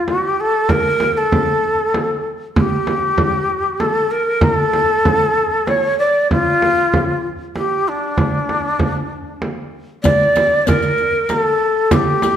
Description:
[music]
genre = Arabic maqam ensemble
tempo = 96 BPM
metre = 3/4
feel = straight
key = D maqam nahawand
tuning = A4 = 438 Hz
[part]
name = breathy ney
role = melody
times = 0.0-12.4 s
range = D4 to D5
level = -16 LUFS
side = equal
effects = none
[part]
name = frame drum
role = percussion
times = 0.1-12.4 s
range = none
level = -19 LUFS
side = right 1 dB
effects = none
[part]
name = riq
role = percussion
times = 10.0-12.4 s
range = none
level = -27 LUFS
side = left 5 dB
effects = none
[sound]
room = wet recital hall reverb, RT60 1.4 s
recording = dark, warm production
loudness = -14 LUFS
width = side -9 dB against mid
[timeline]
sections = 0.0-10.0 A section; 10.0-12.4 B section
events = none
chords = none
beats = 0.07 | 0.69 1.31 1.94 | 2.56 3.19 3.81 | 4.43 5.06 5.68 | 6.30 6.93 7.55 | 8.18 8.80 9.42 | 10.04 10.66 11.29 | 11.91

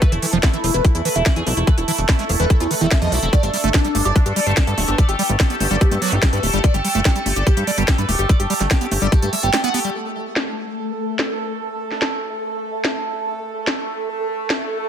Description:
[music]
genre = psychedelic trance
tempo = 145 BPM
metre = 4/4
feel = straight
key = unclear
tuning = A4 = 440 Hz
[part]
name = overdriven synth lead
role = melody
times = 0.0-9.9 s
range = D4 to F#5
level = -24 LUFS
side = equal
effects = phaser, sidechain pumping, digital delay
[part]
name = bubbling stepped-filter texture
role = sustained chords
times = 0.0-14.9 s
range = A3 to A4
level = -25 LUFS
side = right 2 dB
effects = chorus, built-in reverb, sidechain pumping
[part]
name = liquid acid bass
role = riff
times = 0.0-9.9 s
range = D#3 to G4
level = -24 LUFS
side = moving between left 4 dB and right 5 dB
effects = chorus, auto-pan, sidechain pumping, digital delay
[part]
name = electronic kick drum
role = drums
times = 0.0-9.2 s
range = none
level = -15 LUFS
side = equal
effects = none
[part]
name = techno drum kit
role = drums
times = 0.0-14.6 s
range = hi-hat, snare drum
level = -23 LUFS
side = equal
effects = low-pass filter on hats, low-pass filter on snare, low-pass filter on cymbals, low-pass filter on room
[part]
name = fat analog bass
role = bass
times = 0.1-9.5 s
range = D1 to G2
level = -21 LUFS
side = equal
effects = tube saturation
[part]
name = formant-sweep wobble bass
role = second line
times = 4.1-6.2 s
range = B3 to D4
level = -36 LUFS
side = right 3 dB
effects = none
[sound]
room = little or no reverb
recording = none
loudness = -16 LUFS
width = side -9 dB against mid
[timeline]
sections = 0.0-9.9 A section; 9.9-14.9 B section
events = drop 0.0-9.9; kick drops out 9.5-9.9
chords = 0.0 E5; 3.3 G5; 9.9 N.C.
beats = | 0.02 0.43 0.85 1.26 | 1.67 2.09 2.50 2.92 | 3.33 3.74 4.16 4.57 | 4.98 5.40 5.81 6.22 | 6.64 7.05 7.47 7.88 | 8.29 8.71 9.12 9.54 | 9.95 10.36 10.78 11.19 | 11.60 12.02 12.43 12.85 | 13.26 13.67 14.09 14.50

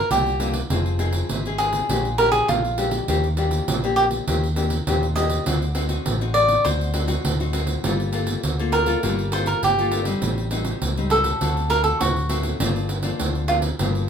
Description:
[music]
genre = samba and choro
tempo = 101 BPM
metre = 4/4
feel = straight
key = G minor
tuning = A4 = 440 Hz
[part]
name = cavaquinho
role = melody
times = 0.0-13.6 s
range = F4 to Eb5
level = -20 LUFS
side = right 1 dB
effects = none
[part]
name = nylon-string guitar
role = accompaniment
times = 0.0-14.1 s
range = F2 to A4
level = -27 LUFS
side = left 5 dB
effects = none
[part]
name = fingered electric bass with an envelope filter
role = bass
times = 0.1-14.1 s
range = F1 to Eb2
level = -25 LUFS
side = equal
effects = none
[part]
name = pandeiro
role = percussion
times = 0.1-14.1 s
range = none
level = -26 LUFS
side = right 3 dB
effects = none
[sound]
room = moderate studio reverb, RT60 0.5 s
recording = minimal, uncompressed stereo recording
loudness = -19 LUFS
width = side -7 dB against mid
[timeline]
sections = 0.0-14.1 A section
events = none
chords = 0.0 Gm7; 0.7 Fm7; 1.9 Bb6; 3.1 Ebmaj7; 5.5 D7b9; 7.8 Gm9; 10.2 Am7b5; 11.4 D7; 12.6 Gm7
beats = 0.10 | 0.70 1.30 1.89 2.49 | 3.08 3.68 4.27 4.87 | 5.46 6.06 6.65 7.25 | 7.84 8.44 9.03 9.63 | 10.22 10.82 11.41 12.01 | 12.60 13.20 13.79

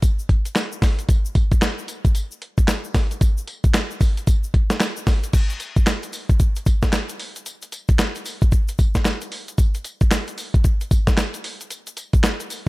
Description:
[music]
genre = R&B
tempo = 113 BPM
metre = 4/4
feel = swing 62% on 16ths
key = none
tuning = none
[part]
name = dusty soul sampler-style drum kit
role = drums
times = 0.0-12.7 s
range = crash cymbal, handclaps, hi-hat, kick drum, snare drum, tambourine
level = -18 LUFS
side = equal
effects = vintage 12-bit sampler grit
[part]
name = tube shaker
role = percussion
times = 0.0-12.7 s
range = none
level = -38 LUFS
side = left 5 dB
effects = none
[sound]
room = little or no reverb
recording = none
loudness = -18 LUFS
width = side -21 dB against mid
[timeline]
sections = 0.0-5.3 A section; 5.3-12.7 B section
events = none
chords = none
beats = 0.03 0.56 | 1.09 1.62 2.15 2.68 | 3.21 3.74 4.27 4.80 | 5.34 5.87 6.40 6.93 | 7.46 7.99 8.52 9.05 | 9.58 10.12 10.65 11.18 | 11.71 12.24

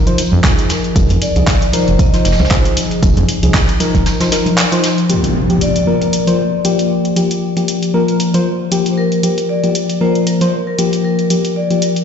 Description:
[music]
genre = deep house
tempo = 116 BPM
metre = 4/4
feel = swing 56% on 16ths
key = G phrygian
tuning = A4 = 441 Hz
[part]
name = mellow FM electric piano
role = stabs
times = 0.0-12.0 s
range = F3 to C5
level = -15 LUFS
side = left 2 dB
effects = chorus, sidechain pumping, low-pass filter, digital delay
[part]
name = deep house drum kit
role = drums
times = 0.1-12.0 s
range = handclaps, hi-hat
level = -21 LUFS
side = equal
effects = none
[part]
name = jazz brush drum kit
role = drums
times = 0.2-5.0 s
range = hi-hat, snare drum, tambourine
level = -26 LUFS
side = right 1 dB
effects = high-pass filter on hats, high-pass filter on snare, high-pass filter on perc, high-pass filter on room
[part]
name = round analog bass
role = bass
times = 0.3-4.0 s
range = F1 to F2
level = -14 LUFS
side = equal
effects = sidechain pumping
[part]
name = congas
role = percussion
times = 0.3-4.6 s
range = none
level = -23 LUFS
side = right 4 dB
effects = sidechain pumping on perc
[part]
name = electronic kick drum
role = drums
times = 0.4-4.0 s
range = none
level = -14 LUFS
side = equal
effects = none
[part]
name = vibraphone with medium mallets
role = melody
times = 0.7-12.0 s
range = Bb4 to Eb5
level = -21 LUFS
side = left 1 dB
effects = vintage 12-bit sampler grit, tape echo
[part]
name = impact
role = sound effects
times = 5.1-7.2 s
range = none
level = -20 LUFS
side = equal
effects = none
[sound]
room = moderate lush hall reverb, RT60 2.2 s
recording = played on a big sound system in a bare room, large studio reverb, nothing above 7.8 kHz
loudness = -12 LUFS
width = side -7 dB against mid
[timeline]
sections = 0.0-5.1 A section; 5.1-12.0 B section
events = impact 5.1-7.2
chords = 0.0 Fm7; 5.1 Gm7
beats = 0.44 | 0.96 1.47 1.99 2.51 | 3.03 3.54 4.06 4.58 | 5.09 5.61 6.13 6.65 | 7.16 7.68 8.20 8.72 | 9.23 9.75 10.27 10.79 | 11.30 11.82

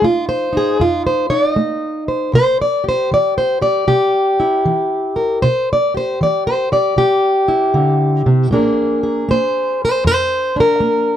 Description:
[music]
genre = acoustic country blues, solo or duo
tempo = 78 BPM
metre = 4/4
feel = swing 66% on 8ths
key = unclear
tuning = A4 = 435 Hz
[part]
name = fingerpicked plugged-in steel-string acoustic guitar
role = solo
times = 0.0-11.2 s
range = F2 to Eb5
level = -13 LUFS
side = equal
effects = none
[sound]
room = light reverb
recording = dry, close 1970s-style studio recording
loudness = -13 LUFS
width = side -10 dB against mid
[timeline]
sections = 0.0-11.2 A section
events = none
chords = 0.0 F7; 2.3 C; 8.5 Bb7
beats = 0.03 0.80 1.58 | 2.35 3.12 3.89 4.66 | 5.43 6.21 6.97 7.74 | 8.51 9.28 10.05 10.81

